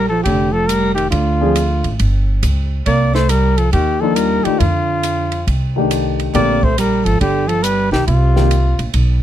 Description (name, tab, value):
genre	jazz, small-group swing and bop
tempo	138 BPM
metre	4/4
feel	swing 65% on 8ths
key	unclear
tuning	A4 = 436 Hz
part	mellow trumpet	melody	0.0-8.9 s	F4 to D5	-18 LUFS	left 2 dB	none
part	warm tenor saxophone	second line	0.0-8.9 s	C3 to Bb3	-20 LUFS	right 5 dB	none
part	upright bass	bass	0.0-9.2 s	F1 to F2	-17 LUFS	equal	none
part	compact cocktail drum kit	drums	0.3-9.1 s	hi-hat, kick drum, ride cymbal, snare drum	-24 LUFS	right 1 dB	none
part	warm baby grand piano	accompaniment	1.4-8.5 s	D3 to Ab4	-18 LUFS	left 4 dB	none
room	little or no reverb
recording	close, detailed microphones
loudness	-13 LUFS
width	side -11 dB against mid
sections	0.0-9.2 A section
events	none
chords	0.0 Bb6; 1.1 Dm7b5; 2.0 N.C.; 2.9 Cm11; 4.6 F13; 6.3 Bbmaj13; 7.2 G; 8.1 Cm7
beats	0.26 0.69 | 1.12 1.56 1.99 2.43 | 2.86 3.30 3.73 4.17 | 4.60 5.04 5.47 5.91 | 6.34 6.77 7.21 7.64 | 8.07 8.51 8.94